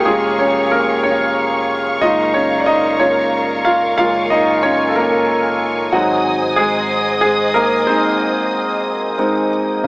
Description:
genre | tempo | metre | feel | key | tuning
six-eight pop ballad | 61 BPM (dotted quarters) | 6/8 | straight | unclear | A4 = 440 Hz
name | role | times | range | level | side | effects
warm concert grand piano | accompaniment | 0.0-9.9 s | Db3 to F5 | -17 LUFS | equal | none
dark studio string section | sustained chords | 0.0-9.8 s | Ab4 to Eb6 | -23 LUFS | equal | none
mellow fretless electric bass | bass | 0.0-9.9 s | F1 to Ab1 | -39 LUFS | equal | none
room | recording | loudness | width
little or no reverb | small speaker sound | -16 LUFS | mono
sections
0.0-9.8 A section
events
grand piano solo 0.0-9.8; break 7.9-9.8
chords
0.0 Db/F; 2.0 Gbmaj7; 5.9 Ab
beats
| 0.06 1.04 | 2.02 3.01 | 3.99 4.97 | 5.94 6.91 | 7.88 8.86 | 9.85

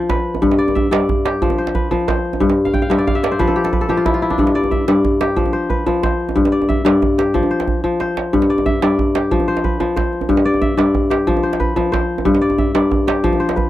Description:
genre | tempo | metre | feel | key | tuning
west african traditional, West African string and xylophone music | 122 BPM (dotted quarters) | 12/8 | straight | G mixolydian | A4 = 439 Hz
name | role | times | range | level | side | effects
kora | arpeggios | 0.0-13.7 s | G2 to G5 | -15 LUFS | left 2 dB | none
djembe | percussion | 0.0-13.6 s | none | -20 LUFS | right 4 dB | none
room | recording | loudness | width
light reverb | dry, close 1970s-style studio recording | -14 LUFS | side -14 dB against mid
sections
0.4-13.7 A section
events
kora fill 2.7-4.4; drum fill 7.8-8.3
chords
0.4 G; 1.4 F5; 2.4 Dm11/G; 3.4 N.C.; 4.4 G5; 5.4 F5; 6.4 G5; 7.3 F5; 8.3 G5; 9.3 F5; 10.3 G5; 11.3 F5; 12.3 G5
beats
| 0.43 0.93 1.42 1.92 | 2.41 2.90 3.40 3.89 | 4.38 4.88 5.37 5.86 | 6.36 6.85 7.34 7.83 | 8.33 8.82 9.31 9.80 | 10.29 10.78 11.27 11.76 | 12.25 12.74 13.23

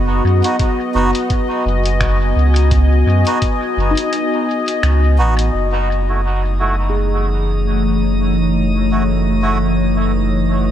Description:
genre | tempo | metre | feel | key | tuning
ambient dub | 85 BPM | 4/4 | swing 57% on 16ths | F# dorian | A4 = 440 Hz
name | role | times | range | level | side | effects
deep dark ambient pad | sustained chords | 0.0-10.7 s | E3 to G#5 | -18 LUFS | left 2 dB | chorus, built-in reverb
handpan | arpeggios | 0.0-10.1 s | D#4 to G#4 | -28 LUFS | left 1 dB | low-pass filter, diffuse ambient delay
warm sub bass | bass | 0.0-10.7 s | F#1 to F#2 | -16 LUFS | equal | none
melodica | stabs | 0.4-9.6 s | A3 to F#4 | -24 LUFS | right 2 dB | low-pass filter, dub echo
lo-fi sampler-style drum kit | drums | 0.4-5.5 s | finger snaps, hi-hat | -27 LUFS | left 1 dB | low-pass filter on hats, low-pass filter on snare, dub echo
electronic kick drum | drums | 0.6-3.6 s | none | -18 LUFS | equal | none
drifting glass-harmonics texture | texture | 5.9-10.7 s | D#4 to D#6 | -29 LUFS | equal | chorus, built-in reverb
room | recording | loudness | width
moderate lush hall reverb, RT60 2.7 s | dreamy mix soaked in reverb | -13 LUFS | side -10 dB against mid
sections
0.0-5.5 A section; 5.5-10.7 B section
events
kick drops out 4.1-5.5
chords
0.0 B/F#; 5.5 F#m7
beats
0.60 1.30 2.01 | 2.71 3.42 4.13 4.83 | 5.54 6.24 6.95 7.66 | 8.36 9.07 9.77 10.48

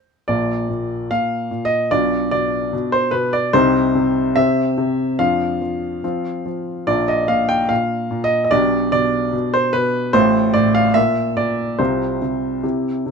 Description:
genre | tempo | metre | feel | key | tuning
classical-period piano sonatina | 73 BPM | 2/4 | straight | Bb major | A4 = 440 Hz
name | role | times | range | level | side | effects
warm baby grand piano | solo | 0.3-13.1 s | A1 to G5 | -16 LUFS | equal | none
room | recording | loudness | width
light reverb | close, detailed microphones | -16 LUFS | side -5 dB against mid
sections
0.3-13.1 A section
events
none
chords
0.3 Bb; 1.9 Bdim; 3.5 Cm; 4.4 C; 5.2 Dm/F; 6.0 F5; 6.9 Bb; 8.5 G/B; 10.1 F/A; 11.0 Bb; 11.8 Csus4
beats
| 0.28 1.10 | 1.91 2.73 | 3.54 4.36 | 5.19 6.04 | 6.88 7.70 | 8.53 9.34 | 10.15 10.96 | 11.80 12.64

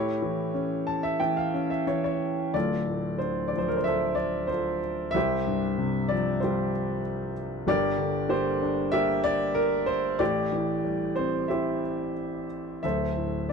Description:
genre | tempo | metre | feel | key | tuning
classical, lyrical solo piano | 93 BPM | 4/4 | uneven beats, rubato | D minor | A4 = 440 Hz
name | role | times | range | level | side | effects
dark grand piano | solo | 0.0-13.5 s | D1 to A5 | -25 LUFS | equal | none
room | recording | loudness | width
light reverb | close, detailed microphones | -25 LUFS | side -5 dB against mid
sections
0.0-2.5 A section; 2.5-13.5 B section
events
grand piano fill 0.5-2.5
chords
0.0 A7; 2.5 Dm7; 5.2 Csus4; 7.7 Gm; 10.2 Am7; 12.8 D7(no3)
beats
0.54 1.20 1.87 | 2.55 3.21 3.86 4.51 | 5.15 5.79 6.43 7.05 | 7.67 8.30 8.93 9.57 | 10.20 10.84 11.50 12.17 | 12.84 13.50

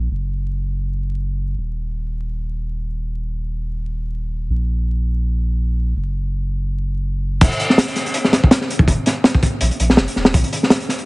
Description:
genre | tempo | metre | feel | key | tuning
drum and bass, jungle | 164 BPM | 4/4 | swing 55% on 16ths | Eb minor | A4 = 440 Hz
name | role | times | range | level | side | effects
soft dub sub bass | bass | 0.0-10.4 s | Eb1 to Bb1 | -20 LUFS | equal | none
crunchy breakbeat drum kit | drums | 7.4-11.1 s | crash cymbal, hi-hat, kick drum, snare drum | -14 LUFS | equal | none
room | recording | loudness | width
little or no reverb | heavily compressed radio sound, multiband compression, vinyl crackle, nothing above 10.7 kHz | -17 LUFS | side -24 dB against mid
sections
0.0-7.4 A section; 7.4-11.1 B section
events
drop 7.4-11.1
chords
none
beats
| 0.10 0.47 0.83 1.20 | 1.56 1.93 2.29 2.66 | 3.03 3.39 3.76 4.12 | 4.49 4.86 5.22 5.59 | 5.95 6.32 6.68 7.05 | 7.42 7.78 8.15 8.51 | 8.88 9.24 9.61 9.98 | 10.34 10.71

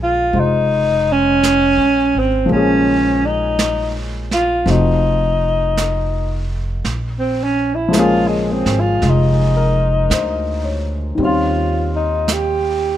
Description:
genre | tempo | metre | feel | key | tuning
jazz ballad | 55 BPM | 4/4 | swing 67% on 8ths | Bb minor | A4 = 440 Hz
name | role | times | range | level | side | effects
breathy alto saxophone | melody | 0.0-13.0 s | Ab3 to G4 | -17 LUFS | equal | none
warm upright piano | accompaniment | 0.0-13.0 s | Db3 to Db5 | -21 LUFS | left 3 dB | none
upright bass | bass | 0.0-13.0 s | F1 to Eb2 | -20 LUFS | right 1 dB | none
vintage brush drum kit | drums | 0.3-13.0 s | brushed snare drum, hi-hat, snare drum | -26 LUFS | right 4 dB | none
room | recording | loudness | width
light reverb | minimal, uncompressed stereo recording | -14 LUFS | side -11 dB against mid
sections
0.0-6.9 A section; 6.9-13.0 B section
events
alto saxophone solo 6.9-13.0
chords
0.0 Bbm7; 4.7 F7b9; 6.9 Bbm7; 11.2 Eb13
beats
0.33 1.42 | 2.50 3.59 4.67 5.76 | 6.85 7.94 9.02 10.11 | 11.19 12.27

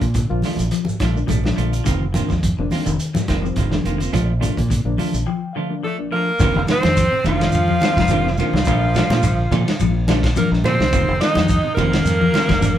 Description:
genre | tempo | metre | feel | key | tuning
afrobeat | 106 BPM | 4/4 | swing 53% on 16ths | F mixolydian | A4 = 440 Hz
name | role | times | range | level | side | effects
reed electric piano | accompaniment | 0.0-12.7 s | F3 to A5 | -27 LUFS | left 4 dB | overdrive, fast tremolo
semi-hollow electric guitar | arpeggios | 0.0-12.7 s | C3 to F3 | -26 LUFS | left 6 dB | spring reverb, tape echo
semi-hollow electric guitar | stabs | 0.0-12.5 s | Eb3 to F4 | -25 LUFS | right 4 dB | tremolo
fingered electric bass | bass | 0.0-12.8 s | F1 to Bb2 | -21 LUFS | equal | none
vintage drum kit | drums | 0.0-12.8 s | hi-hat, kick drum, ride cymbal, snare drum | -23 LUFS | equal | none
shekere | percussion | 0.0-12.8 s | none | -27 LUFS | right 2 dB | none
congas | percussion | 0.4-12.8 s | none | -25 LUFS | right 1 dB | none
edgy alto saxophone | melody | 5.8-12.8 s | F4 to Eb5 | -21 LUFS | right 1 dB | none
raspy tenor saxophone | second line | 5.9-12.8 s | F3 to Eb4 | -26 LUFS | right 2 dB | none
room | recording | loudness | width
moderate studio ambience, RT60 0.5 s | band playing live in one room | -16 LUFS | side -11 dB against mid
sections
0.0-6.4 A section; 6.4-12.8 B section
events
reed electric piano fill 4.7-6.4; break 5.3-6.4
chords
0.0 Bbmaj7; 1.9 F7sus4; 4.1 Bbmaj7; 6.4 F7sus4; 8.7 Bbmaj7; 10.9 F7sus4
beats
0.15 0.72 1.29 | 1.86 2.43 3.00 3.56 | 4.13 4.70 5.27 5.83 | 6.40 6.97 7.53 8.10 | 8.66 9.23 9.79 10.36 | 10.92 11.49 12.05 12.62

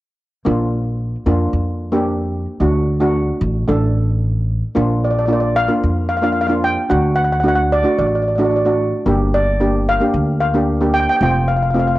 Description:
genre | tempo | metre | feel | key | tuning
calypso | 112 BPM | 4/4 | straight | Bb major | A4 = 439 Hz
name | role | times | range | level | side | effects
steel pan | accompaniment | 0.4-12.0 s | A3 to A4 | -18 LUFS | equal | cassette tape
upright bass | bass | 0.5-12.0 s | F1 to F2 | -19 LUFS | equal | tube saturation
steel pan | melody | 5.0-12.0 s | D5 to G5 | -18 LUFS | equal | cassette tape
room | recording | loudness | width
light reverb, studio ambience | home recording on cassette | -14 LUFS | side -16 dB against mid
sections
0.5-4.8 A section; 4.8-12.0 B section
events
none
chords
0.5 Bb; 2.6 D; 4.8 Bb; 6.9 D; 9.1 Gm; 11.2 F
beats
| 0.45 0.99 1.53 2.07 | 2.61 3.15 3.68 4.22 | 4.76 5.30 5.83 6.37 | 6.91 7.45 7.98 8.52 | 9.06 9.59 10.13 10.67 | 11.21 11.74

